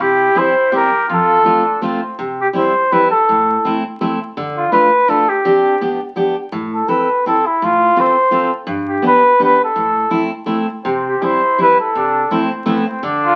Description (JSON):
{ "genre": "alpine folk, alpine dance band", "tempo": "166 BPM", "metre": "3/4", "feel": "swing 54% on 8ths, rubato", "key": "C major", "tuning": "A4 = 440 Hz", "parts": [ { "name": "warm flugelhorn", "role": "melody", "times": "0.0-13.4 s", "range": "E4 to C5", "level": "-15 LUFS", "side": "equal", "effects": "none" }, { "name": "mellow trumpet", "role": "second line", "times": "0.0-2.2, 10.8-13.4 s", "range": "B3 to G4", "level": "-24 LUFS", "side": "equal", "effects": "none" }, { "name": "fingerpicked steel-string acoustic guitar", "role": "accompaniment", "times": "0.0-13.3 s", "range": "F2 to A4", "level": "-21 LUFS", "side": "equal", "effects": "none" } ], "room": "wet studio reverb, RT60 0.7 s", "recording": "very old 78 rpm record, vinyl crackle", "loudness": "-15 LUFS", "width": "mono", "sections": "0.0-2.2 A section; 2.2-13.4 B section", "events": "none", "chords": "0.0 C7; 1.1 F; 2.2 C; 3.3 Am; 4.4 Dm; 5.4 Gsus4; 5.8 G; 6.5 Am; 7.6 F/A; 8.7 G; 9.8 Am; 10.9 C; 12.0 Am/C", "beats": "| 0.00 0.36 0.72 | 1.09 1.45 1.81 | 2.19 2.55 2.92 | 3.28 3.64 4.00 | 4.36 4.72 5.08 | 5.44 5.80 6.17 | 6.53 6.90 7.27 | 7.63 7.99 8.34 | 8.70 9.05 9.41 | 9.77 10.13 10.50 | 10.86 11.23 11.60 | 11.96 12.32 12.68 | 13.04" }